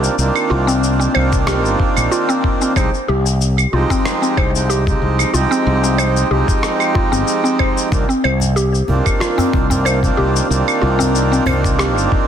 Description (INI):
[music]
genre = organic downtempo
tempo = 93 BPM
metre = 4/4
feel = swing 54% on 16ths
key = C minor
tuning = A4 = 440 Hz
[part]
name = hand-pumped harmonium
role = accompaniment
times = 0.0-12.3 s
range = Eb3 to G4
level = -18 LUFS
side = right 3 dB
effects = sidechain pumping, digital delay
[part]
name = mallet-like synth pluck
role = arpeggios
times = 0.0-12.0 s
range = C4 to C5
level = -20 LUFS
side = left 1 dB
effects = chorus, digital delay
[part]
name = fretless electric bass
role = bass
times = 0.0-12.1 s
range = G1 to C2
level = -17 LUFS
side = equal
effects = sidechain pumping
[part]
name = electronic cabasa, claves and rim click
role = drums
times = 0.0-12.1 s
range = none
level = -23 LUFS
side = equal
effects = soft clipping on snare
[part]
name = electronic kick drum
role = drums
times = 1.3-12.3 s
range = none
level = -18 LUFS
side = equal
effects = none
[part]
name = djembe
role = percussion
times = 8.4-11.6 s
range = none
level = -25 LUFS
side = right 1 dB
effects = none
[sound]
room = moderate lush hall reverb, RT60 2.1 s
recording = dense, heavily limited modern master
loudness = -13 LUFS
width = side -9 dB against mid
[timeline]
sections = 0.0-12.3 A section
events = none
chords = 0.0 Cm11; 2.8 Fm9/C; 7.9 Cm11